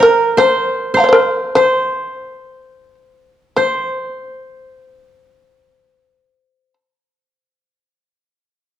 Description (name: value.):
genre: japanese traditional, Japanese chamber music.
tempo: 49-85 BPM.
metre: 2/4.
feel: rubato.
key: C in sen.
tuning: A4 = 439 Hz.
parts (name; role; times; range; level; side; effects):
shamisen; melody; 0.0-6.7 s; Bb4 to Bb5; -13 LUFS; left 1 dB; none.
koto; second line; 0.0-6.7 s; Bb4 to G5; -17 LUFS; right 2 dB; none.
room: wet recital hall reverb, RT60 1.5 s.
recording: worn, warbling old tape, cassette tape, warbly pitch drift.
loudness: -12 LUFS.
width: side -11 dB against mid.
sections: 0.0-3.6 A section; 3.6-8.1 B section.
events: slowing down 0.0-3.6.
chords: none.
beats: | 0.02 0.75 | 1.55 2.46 | 3.56 4.74 | 5.84.